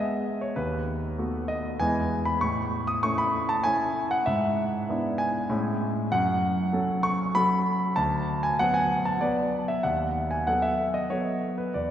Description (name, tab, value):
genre	classical-period piano sonatina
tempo	97 BPM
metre	3/4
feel	straight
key	E major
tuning	A4 = 440 Hz
part	warm concert grand piano	solo	0.0-11.9 s	D2 to D#6	-24 LUFS	equal	none
room	wet church reverb, RT60 3.4 s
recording	heard from further back in the room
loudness	-24 LUFS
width	side -10 dB against mid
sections	0.0-11.9 A section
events	none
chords	0.0 E (rootless); 0.6 B7/D#; 1.8 E; 2.4 A; 4.3 E7/G#; 5.5 Amaj7; 6.1 F#m; 8.0 Bm/D; 9.8 B7/D#